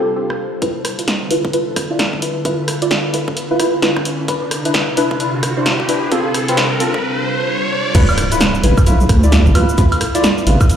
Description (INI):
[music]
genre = UK garage, two-step garage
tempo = 131 BPM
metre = 4/4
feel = swing 61% on 16ths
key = D dorian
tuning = A4 = 440 Hz
[part]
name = ethereal airy pad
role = sustained chords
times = 0.0-10.8 s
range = C3 to C5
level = -24 LUFS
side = equal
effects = ensemble chorus, built-in reverb, sidechain pumping
[part]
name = deep mellow chord stab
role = stabs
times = 0.0-10.6 s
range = C4 to D5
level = -19 LUFS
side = equal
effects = chorus, ping-pong delay
[part]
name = punchy analog drum machine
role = drums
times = 0.3-10.8 s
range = crash cymbal, hi-hat, rim click, shaker, snare drum, woodblock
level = -19 LUFS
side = right 1 dB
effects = high-pass filter on snare, high-pass filter on hats, high-pass filter on cymbals, high-pass filter on perc, high-pass filter on room
[part]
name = electronic kick drum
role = drums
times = 0.6-10.7 s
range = none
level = -17 LUFS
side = equal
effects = high-pass filter on kick, high-pass filter on room
[part]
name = riser and impact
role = sound effects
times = 1.9-9.8 s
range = none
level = -23 LUFS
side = equal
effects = none
[part]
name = deep soft wobble bass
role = bass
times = 7.9-10.6 s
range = A1 to D2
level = -12 LUFS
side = equal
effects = chorus
[sound]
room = moderate plate reverb, RT60 2.4 s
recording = played on a big sound system in a bare room, large studio reverb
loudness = -13 LUFS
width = side -9 dB against mid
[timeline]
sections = 0.6-7.9 A section; 7.9-10.8 B section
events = build-up 0.6-7.9; filter sweep on synth stab 0.6-7.9; riser 1.9-7.9; break 7.0-7.9; drop 7.9-10.8; impact 7.9-9.8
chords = 0.0 G9sus4; 0.6 Dm69; 4.3 Cmaj9; 6.1 G9sus4; 7.9 Dm69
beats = 0.16 | 0.62 1.08 1.54 1.99 | 2.45 2.91 3.37 3.83 | 4.28 4.74 5.20 5.66 | 6.12 6.57 7.03 7.49 | 7.95 8.41 8.86 9.32 | 9.78 10.24 10.70